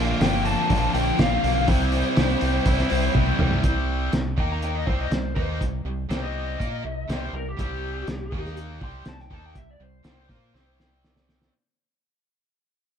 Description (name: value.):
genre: classic rock.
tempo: 122 BPM.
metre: 4/4.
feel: straight.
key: unclear.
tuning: A4 = 439 Hz.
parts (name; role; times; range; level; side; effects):
distorted electric guitar; riff; 0.0-11.5 s; Bb2 to Bb4; -32 LUFS; right 12 dB; overdrive.
overdriven electric guitar; riff; 0.0-11.5 s; Bb2 to Bb4; -31 LUFS; left 6 dB; spring reverb.
thick fuzz guitar; riff; 0.0-3.6 s; Bb2 to E4; -27 LUFS; equal; distortion.
growling fingered electric bass; bass; 0.0-11.5 s; G1 to Bb2; -28 LUFS; right 1 dB; overdrive.
lead guitar through a small cranked amp; melody; 0.2-10.8 s; G4 to C6; -30 LUFS; left 4 dB; overdrive.
cloth-damped thuddy drum kit; drums; 0.2-11.5 s; hi-hat, kick drum, snare drum, toms; -25 LUFS; equal; none.
room: little or no reverb.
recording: none.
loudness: -21 LUFS.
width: side -8 dB against mid.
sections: 0.0-3.6 A section; 3.6-11.5 B section.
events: drum fill 3.2-3.6, 10.5-11.5; fade-out 3.6-11.5; lead electric guitar solo 3.6-11.5.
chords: 0.0 Bbadd9; 1.7 C; 3.6 C5; 4.4 Eb5; 4.9 C5; 8.3 Eb5; 8.8 C5.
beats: 0.22 0.71 1.20 | 1.69 2.17 2.66 3.15 | 3.64 4.13 4.62 5.12 | 5.61 6.10 6.59 7.09 | 7.58 8.07 8.57 9.06 | 9.55 10.05 10.54 11.04.